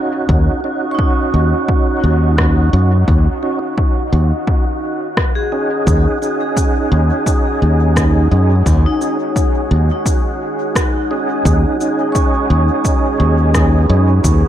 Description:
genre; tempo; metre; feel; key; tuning
ambient dub; 86 BPM; 4/4; swing 59% on 16ths; unclear; A4 = 439 Hz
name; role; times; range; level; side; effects
deep dark ambient pad; sustained chords; 0.0-14.5 s; Eb4 to Gb5; -25 LUFS; right 2 dB; chorus, built-in reverb
vibraphone with medium hard mallets; arpeggios; 0.0-14.5 s; Eb4 to Db6; -24 LUFS; left 2 dB; dub echo
tonewheel organ; stabs; 0.0-14.1 s; Db4 to Ab4; -20 LUFS; right 2 dB; overdrive, chorus vibrato, slow rotary speaker, dub echo
wind-like tuned noise texture; texture; 0.0-14.5 s; Gb4; -26 LUFS; right 3 dB; built-in reverb
modern bright fingered electric bass; bass; 0.3-14.4 s; Eb2 to Gb2; -12 LUFS; equal; tube saturation
electronic kick drum; drums; 0.3-14.4 s; none; -16 LUFS; equal; overdrive
electronic rim click and cabasa; drums; 2.4-14.4 s; none; -22 LUFS; left 1 dB; none
room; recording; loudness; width
digital ambience; echo-heavy mix; -12 LUFS; side -11 dB against mid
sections
0.0-14.5 A section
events
fade-in on ambient pad 0.0-14.5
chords
0.0 Ebm7; 5.9 Dbsus2/Eb

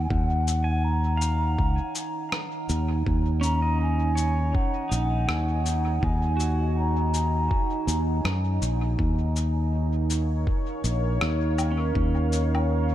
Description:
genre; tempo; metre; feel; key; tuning
ambient dub; 81 BPM; 4/4; swing 59% on 16ths; Eb minor; A4 = 444 Hz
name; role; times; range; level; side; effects
mellow hollow wooden flute; melody; 0.0-8.2 s; Gb5 to Bb5; -32 LUFS; equal; dub echo
deep dark ambient pad; sustained chords; 0.0-12.9 s; Eb4 to Ab5; -32 LUFS; right 3 dB; chorus, built-in reverb
fingered electric bass; bass; 0.0-12.9 s; Bb1 to Gb2; -24 LUFS; equal; none
electronic kick drum; drums; 0.1-12.1 s; none; -26 LUFS; equal; none
electronic cabasa, rim click and woodblock; drums; 0.5-12.7 s; none; -32 LUFS; left 2 dB; dub echo
pedal steel guitar; arpeggios; 0.6-12.9 s; Db4 to Ab5; -36 LUFS; right 2 dB; dub echo
room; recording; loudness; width
light reverb, digital ambience; none; -22 LUFS; side -12 dB against mid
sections
0.0-12.9 A section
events
none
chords
0.0 Ebm9; 9.0 Bbm

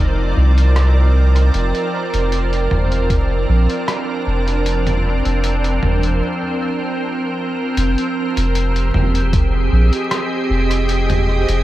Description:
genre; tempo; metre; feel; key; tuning
ambient dub; 77 BPM; 4/4; straight; F dorian; A4 = 440 Hz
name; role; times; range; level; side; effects
soft additive organ-like pad; sustained chords; 0.0-11.6 s; F3 to Eb5; -19 LUFS; right 1 dB; ensemble chorus, built-in reverb
soft dub sub bass; bass; 0.0-11.6 s; F1 to C2; -15 LUFS; equal; none
lo-fi sampler-style drum kit; drums; 0.6-11.6 s; hi-hat, rim click, toms; -24 LUFS; equal; dub echo
electronic kick drum; drums; 3.1-3.3, 9.3-9.5 s; none; -18 LUFS; equal; none
room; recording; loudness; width
moderate spring reverb, RT60 2.4 s; vinyl crackle, faint mains hum; -15 LUFS; side -15 dB against mid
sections
0.0-7.8 A section; 7.8-11.6 B section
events
break 6.2-7.8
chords
0.0 Cm7/F; 7.8 Fm9

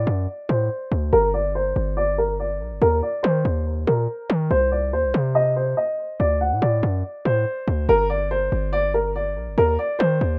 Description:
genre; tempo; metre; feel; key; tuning
hip hop, drill; 142 BPM; 4/4; half-time; G harmonic minor; A4 = 440 Hz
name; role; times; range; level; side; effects
dark upright piano; melody; 0.0-10.4 s; Bb4 to F#5; -24 LUFS; equal; low-pass filter, digital delay
hard-hitting 808-style bass; bass; 0.0-10.4 s; G1 to Eb3; -25 LUFS; equal; none
room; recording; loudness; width
moderate studio reverb, RT60 0.6 s; rough home demo mix; -22 LUFS; mono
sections
0.0-10.4 A section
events
filter sweep on upright piano 0.0-7.9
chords
0.0 D; 1.1 Gm; 2.8 Eb5; 4.5 Cm; 6.2 D; 7.9 Gm; 9.6 Eb5

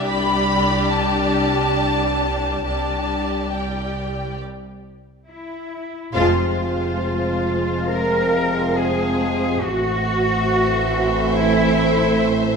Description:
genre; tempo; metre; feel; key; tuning
cinematic; 69 BPM; 4/4; straight; unclear; A4 = 440 Hz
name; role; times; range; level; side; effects
warm studio violin section; melody; 0.0-12.6 s; E5 to B5; -26 LUFS; left 2 dB; none
warm studio violin section; second line; 0.0-12.6 s; G4 to D5; -26 LUFS; left 2 dB; none
warm studio viola section; accompaniment; 0.0-12.6 s; G3 to D4; -26 LUFS; right 2 dB; none
rich studio cello section; bass; 0.0-12.2 s; C2 to Bb4; -24 LUFS; right 1 dB; none
rich studio double bass section; bass; 0.0-12.6 s; F1 to C2; -26 LUFS; right 1 dB; none
clear clarinet; second line; 5.3-12.2 s; E4 to Bb4; -27 LUFS; left 1 dB; none
dark French horn section; sustained chords; 6.1-12.6 s; Ab3 to C4; -26 LUFS; left 3 dB; none
warm trombone section; sustained chords; 6.2-12.6 s; A2 to F3; -26 LUFS; right 2 dB; none
room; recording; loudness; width
wet scoring stage reverb, RT60 1.7 s; minimal, uncompressed stereo recording; -17 LUFS; side -5 dB against mid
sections
0.0-6.1 A section; 6.1-12.6 B section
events
break 4.4-6.1; band accent 6.1-7.0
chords
0.0 Cadd9; 6.1 Fm; 9.6 Am

